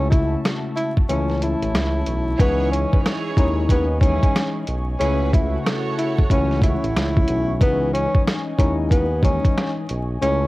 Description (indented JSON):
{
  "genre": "hip hop, boom-bap hip-hop",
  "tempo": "92 BPM",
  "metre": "4/4",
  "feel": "swing 62% on 16ths",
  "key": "C# minor",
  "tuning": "A4 = 439 Hz",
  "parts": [
    { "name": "breathy tenor saxophone", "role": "melody", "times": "0.0-10.5 s", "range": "B3 to E4", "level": "-24 LUFS", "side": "equal", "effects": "cassette tape, tape echo" },
    { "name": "mellow tine electric piano", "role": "accompaniment", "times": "0.0-10.5 s", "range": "C#2 to G#4", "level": "-26 LUFS", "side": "left 4 dB", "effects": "medium stereo tremolo, cassette tape" },
    { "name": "hollow soft pad", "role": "sustained chords", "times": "0.0-10.5 s", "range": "C#4 to C#6", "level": "-34 LUFS", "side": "equal", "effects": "chorus" },
    { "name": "smooth synth bass", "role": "bass", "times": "0.0-10.5 s", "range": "A1 to D#2", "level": "-23 LUFS", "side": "equal", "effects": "none" },
    { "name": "dusty soul sampler-style drum kit", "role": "drums", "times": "0.1-10.4 s", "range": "hi-hat, kick drum, rim click, snare drum", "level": "-19 LUFS", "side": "equal", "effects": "cassette tape" },
    { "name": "warm studio string section", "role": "stabs", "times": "2.4-6.6 s", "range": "G#3 to C#5", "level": "-30 LUFS", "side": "right 6 dB", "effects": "tape echo" }
  ],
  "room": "little or no reverb",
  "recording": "home recording on cassette, vinyl crackle",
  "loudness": "-18 LUFS",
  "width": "side -19 dB against mid",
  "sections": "0.0-2.4 A section; 2.4-10.5 A section",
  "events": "kick muted 1.1-2.4",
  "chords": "0.0 F#m7/C#; 1.1 A; 2.4 C#madd9; 5.0 F#m7/C#; 6.3 A; 7.6 C#madd9"
}